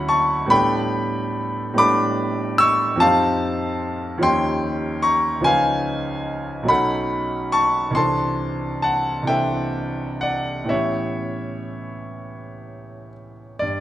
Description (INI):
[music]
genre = classical, impressionist solo piano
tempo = 40-50 BPM (dotted quarters)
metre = 6/8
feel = rubato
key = unclear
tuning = A4 = 441 Hz
[part]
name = clear concert grand piano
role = solo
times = 0.0-13.8 s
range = B1 to E6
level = -19 LUFS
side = equal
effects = none
[sound]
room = wet recital hall reverb, RT60 1.4 s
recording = none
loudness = -18 LUFS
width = side -13 dB against mid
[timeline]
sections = 0.0-13.6 A section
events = none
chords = 0.0 Dmaj9; 0.5 A9sus4; 3.0 F9; 4.2 Eb9; 5.5 C#9; 6.7 B9; 8.0 C69; 10.7 A9